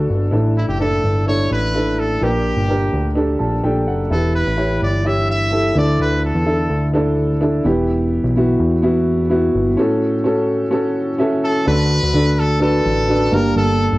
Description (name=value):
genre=piano-driven pop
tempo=127 BPM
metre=4/4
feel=straight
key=D major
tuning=A4 = 440 Hz
part: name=warm upright piano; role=accompaniment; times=0.0-14.0 s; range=G2 to A5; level=-17 LUFS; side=equal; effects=cassette tape
part: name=fat analog bass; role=bass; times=0.0-14.0 s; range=E1 to E2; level=-19 LUFS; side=equal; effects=none
part: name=brilliant trumpet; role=melody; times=0.6-6.9, 11.4-14.0 s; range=E4 to E5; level=-21 LUFS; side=equal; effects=cassette tape
room=moderate studio reverb, RT60 0.6 s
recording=home recording on cassette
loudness=-15 LUFS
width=side -19 dB against mid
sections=0.0-4.1 A section; 4.1-11.7 B section; 11.7-14.0 C section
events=upright piano fill 3.2-4.1, 11.0-11.7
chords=0.3 Asus4; 2.2 Gm; 4.1 Em; 5.8 Dsus2; 7.7 Em; 9.8 A6; 11.7 D; 13.3 Gm